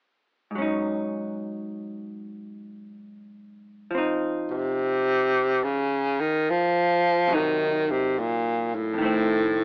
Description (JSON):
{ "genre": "jazz", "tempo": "71 BPM", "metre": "4/4", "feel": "swing 67% on 8ths", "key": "unclear", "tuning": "A4 = 440 Hz", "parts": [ { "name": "vintage hollow-body jazz guitar", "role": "accompaniment", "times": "0.5-9.6 s", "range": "F2 to Eb4", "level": "-28 LUFS", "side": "equal", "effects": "none" }, { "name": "warm baritone saxophone", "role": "melody", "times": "4.5-9.6 s", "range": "A2 to F3", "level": "-21 LUFS", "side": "equal", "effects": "plate reverb" } ], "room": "moderate studio reverb, RT60 0.8 s", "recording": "AM radio sound", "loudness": "-22 LUFS", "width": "side -32 dB against mid", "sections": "0.5-3.9 A section; 3.9-9.6 B section", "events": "none", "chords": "0.5 Ab7sus4; 3.9 Cmadd11; 7.3 Cdim; 9.0 F7" }